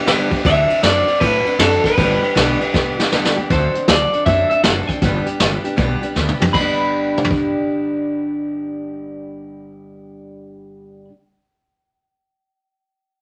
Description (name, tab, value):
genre	rockabilly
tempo	157 BPM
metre	4/4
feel	swing 65% on 8ths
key	G major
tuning	A4 = 441 Hz
part	picked steel-string acoustic guitar	accompaniment	0.0-11.1 s	G2 to A4	-24 LUFS	equal	none
part	upright bass	bass	0.0-11.1 s	F#1 to A2	-26 LUFS	equal	none
part	vintage brush drum kit	drums	0.1-7.4 s	crash cymbal, hi-hat, kick drum, ride cymbal, snare drum, toms	-20 LUFS	equal	none
part	electric guitar through a small old amp	melody	0.5-11.0 s	A4 to B5	-20 LUFS	equal	none
room	moderate studio reverb, RT60 0.7 s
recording	none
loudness	-17 LUFS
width	mono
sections	0.0-3.5 A section; 3.5-6.5 B section; 6.5-9.6 C section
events	drum fill 2.7-3.5, 6.2-6.5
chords	0.4 D7; 2.0 G; 3.5 D7; 5.0 G